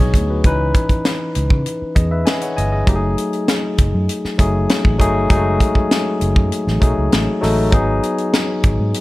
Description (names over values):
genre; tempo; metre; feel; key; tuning
lush 1970s-style soul; 99 BPM; 4/4; straight; F# dorian; A4 = 440 Hz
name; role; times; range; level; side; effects
barky tine electric piano; accompaniment; 0.0-9.0 s; E3 to G#5; -19 LUFS; left 2 dB; none
vintage muted fingered electric bass; bass; 0.0-8.9 s; F#1 to C#3; -19 LUFS; equal; none
tight funk drum kit; drums; 0.1-9.0 s; hi-hat, kick drum, snare drum; -16 LUFS; equal; none
room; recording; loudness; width
little or no reverb; none; -14 LUFS; side -18 dB against mid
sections
0.0-9.0 A section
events
none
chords
0.4 C#m9; 2.9 F#m69; 7.7 G#m7